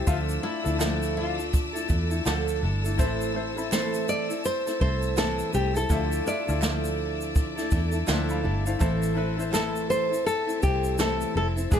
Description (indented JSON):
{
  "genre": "acoustic pop",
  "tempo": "82 BPM",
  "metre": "4/4",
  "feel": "swing 60% on 16ths",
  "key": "A minor",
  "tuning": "A4 = 440 Hz",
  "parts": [
    { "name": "nylon-string guitar", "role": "melody", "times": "0.0-11.8 s", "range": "E4 to D5", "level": "-28 LUFS", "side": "left 2 dB", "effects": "none" },
    { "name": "clear baby grand piano", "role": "accompaniment", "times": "0.0-11.8 s", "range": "F3 to C6", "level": "-38 LUFS", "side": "left 5 dB", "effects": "none" },
    { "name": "fingerpicked steel-string acoustic guitar", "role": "accompaniment", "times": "0.0-11.8 s", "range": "A2 to B4", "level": "-30 LUFS", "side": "right 1 dB", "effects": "none" },
    { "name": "bright studio string section", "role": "sustained chords", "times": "0.0-11.8 s", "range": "B4 to E6", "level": "-37 LUFS", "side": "left 3 dB", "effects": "none" },
    { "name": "vintage muted fingered electric bass", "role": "bass", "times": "0.1-11.8 s", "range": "E1 to E2", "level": "-29 LUFS", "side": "equal", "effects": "none" },
    { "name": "jazz brush drum kit", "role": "drums", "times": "0.1-11.8 s", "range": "kick drum, shaker, snare drum", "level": "-27 LUFS", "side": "equal", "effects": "none" },
    { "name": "group handclap", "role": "percussion", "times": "0.8-11.2 s", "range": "none", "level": "-41 LUFS", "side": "right 8 dB", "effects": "none" }
  ],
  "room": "light reverb",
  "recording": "none",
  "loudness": "-24 LUFS",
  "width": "side -8 dB against mid",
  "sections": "0.0-11.8 A section",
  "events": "none",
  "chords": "0.1 Dmadd9; 3.0 Am; 5.9 Dmadd9; 8.8 Am",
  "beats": "| 0.07 0.80 1.53 2.26 | 2.99 3.72 4.45 5.17 | 5.90 6.63 7.36 8.09 | 8.81 9.54 10.27 11.00 | 11.72"
}